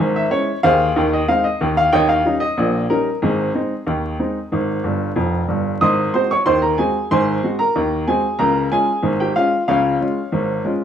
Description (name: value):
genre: ragtime piano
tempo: 93 BPM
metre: 2/4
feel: straight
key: Ab major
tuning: A4 = 439 Hz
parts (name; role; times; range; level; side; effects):
- clear upright piano; solo; 0.0-10.8 s; F1 to Eb6; -16 LUFS; equal; none
room: moderate studio reverb, RT60 0.9 s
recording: vinyl crackle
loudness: -16 LUFS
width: side -9 dB against mid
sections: 0.0-5.8 A section; 5.8-10.8 B section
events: upright piano fill 4.8-5.8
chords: 0.0 Dbm; 0.6 Ab/Eb; 1.9 Eb7; 3.2 Ab; 5.8 Ab7; 8.4 Db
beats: 0.00 | 0.64 1.28 | 1.92 2.57 | 3.22 3.87 | 4.52 5.17 | 5.82 6.46 | 7.11 7.75 | 8.39 9.04 | 9.68 10.32